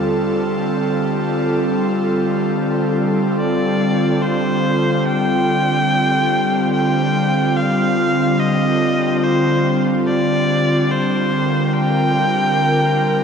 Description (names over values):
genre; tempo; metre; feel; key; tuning
ambient; free time; none; none; unclear; A4 = 439 Hz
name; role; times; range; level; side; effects
airy breathy pad; sustained chords; 0.0-13.2 s; D3 to Bb4; -16 LUFS; equal; chorus
glass harmonica; texture; 0.0-3.4 s; F6; -41 LUFS; left 3 dB; none
clear electric violin; melody; 3.4-13.2 s; C5 to G5; -20 LUFS; equal; tape echo
room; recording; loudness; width
wet lush hall reverb, RT60 2.7 s; none; -15 LUFS; side -6 dB against mid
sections
0.0-3.4 A section; 3.4-13.2 B section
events
none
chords
0.1 F69/D; 10.1 C9sus4